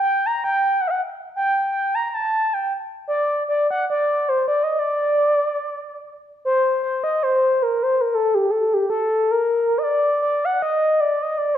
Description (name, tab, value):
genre	balkan folk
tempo	free time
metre	none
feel	none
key	D phrygian dominant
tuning	A4 = 440 Hz
part	reedy FM lead	solo	0.0-11.6 s	G4 to Bb5	-18 LUFS	equal	chorus
room	wet recital hall reverb, RT60 1.5 s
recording	dark, warm production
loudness	-18 LUFS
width	side -10 dB against mid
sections	0.0-6.5 A section; 6.5-11.6 A section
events	none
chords	none